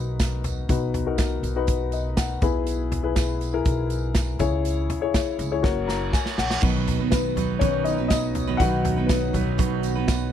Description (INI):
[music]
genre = piano-driven pop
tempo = 122 BPM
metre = 4/4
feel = straight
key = B major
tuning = A4 = 442 Hz
[part]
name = dark upright piano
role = accompaniment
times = 0.0-10.3 s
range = B2 to B5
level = -26 LUFS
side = left 7 dB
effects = none
[part]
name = upright bass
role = bass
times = 0.0-10.3 s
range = F#1 to C#2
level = -28 LUFS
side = equal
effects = none
[part]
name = natural country drum kit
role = drums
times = 0.2-10.2 s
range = crash cymbal, hi-hat, kick drum, snare drum, toms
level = -25 LUFS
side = equal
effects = none
[part]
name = tambourine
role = percussion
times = 0.2-10.2 s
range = none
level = -41 LUFS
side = right 18 dB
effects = none
[part]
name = reverse cymbal and impact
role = sound effects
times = 5.8-8.6 s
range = none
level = -34 LUFS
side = right 6 dB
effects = none
[part]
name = picked steel-string acoustic guitar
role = riff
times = 6.6-10.3 s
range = B2 to B4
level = -26 LUFS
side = right 14 dB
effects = none
[sound]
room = small room reverb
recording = dry, close 1970s-style studio recording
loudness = -21 LUFS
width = side -10 dB against mid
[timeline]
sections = 0.0-6.6 A section; 6.6-10.3 B section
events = upright piano fill 1.7-2.7, 5.6-6.6; drum fill 5.6-6.6; reverse cymbal 5.8-6.6; impact 6.6-8.6; upright piano solo 6.6-10.3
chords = 0.0 B; 2.4 E/B; 4.4 C#m; 5.6 F#; 6.6 B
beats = 0.20 | 0.70 1.19 1.68 2.18 | 2.67 3.17 3.66 4.16 | 4.65 5.14 5.64 6.13 | 6.62 7.12 7.61 8.11 | 8.60 9.09 9.59 10.08